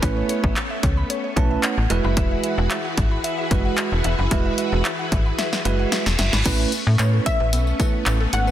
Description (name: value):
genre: dance-pop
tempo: 112 BPM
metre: 4/4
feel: straight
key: A major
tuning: A4 = 441 Hz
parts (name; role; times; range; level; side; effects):
- bell-like tine electric piano; accompaniment; 0.0-8.2 s; G#3 to A5; -26 LUFS; right 7 dB; sidechain pumping
- string machine, violins; sustained chords; 0.0-8.5 s; E3 to B4; -28 LUFS; left 1 dB; ensemble chorus, sidechain pumping
- mallet-like synth pluck; arpeggios; 0.0-8.5 s; B3 to B5; -31 LUFS; left 3 dB; chorus, sidechain pumping, tape echo
- slap-like FM bass; bass; 0.0-8.5 s; E1 to A2; -21 LUFS; equal; sidechain pumping
- punchy analog drum machine; drums; 0.0-8.5 s; crash cymbal, handclaps, hi-hat, kick drum, snare drum; -23 LUFS; equal; none
- reverse cymbal; sound effects; 5.8-6.5 s; none; -29 LUFS; right 1 dB; none
- tambourine; percussion; 6.5-8.5 s; none; -38 LUFS; left 8 dB; none
- wide unison pluck; melody; 7.0-8.5 s; C#5 to F#5; -26 LUFS; left 1 dB; tape echo
room: light reverb, digital ambience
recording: dense, heavily limited modern master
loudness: -18 LUFS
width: side -11 dB against mid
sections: 0.0-6.5 A section; 6.5-8.5 B section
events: tine electric piano fill 1.1-2.2; drum fill 5.4-6.5; reverse cymbal 5.8-6.5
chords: 0.0 Aadd9; 1.9 Eadd9; 6.5 Aadd9